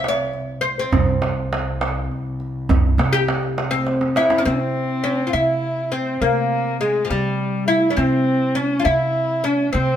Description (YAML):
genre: Persian modal ensemble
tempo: 68 BPM (dotted quarters)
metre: 6/8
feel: straight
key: C dastgah homayun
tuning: A4 = 440 Hz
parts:
  - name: oud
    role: melody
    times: 0.0-10.0 s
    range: F3 to Db5+45c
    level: -20 LUFS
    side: left 1 dB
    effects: none
  - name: upright bass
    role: bass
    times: 0.0-10.0 s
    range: C2 to C3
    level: -24 LUFS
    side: right 1 dB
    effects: none
  - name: warm double bass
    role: drone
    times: 0.0-4.5 s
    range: C2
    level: -32 LUFS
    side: left 1 dB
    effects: none
  - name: tombak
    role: percussion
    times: 0.0-4.4 s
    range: none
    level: -23 LUFS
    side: right 4 dB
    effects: none
  - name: warm kamancheh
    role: second line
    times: 4.2-10.0 s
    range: G3 to E4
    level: -23 LUFS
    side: left 1 dB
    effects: none
room: light reverb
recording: band playing live in one room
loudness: -18 LUFS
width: side -10 dB against mid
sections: 0.0-4.5 A section; 4.5-10.0 B section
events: drum fill 3.9-4.5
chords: none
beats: 0.06 | 0.94 1.82 | 2.70 3.58 | 4.46 5.34 | 6.22 7.10 | 7.98 8.86 | 9.74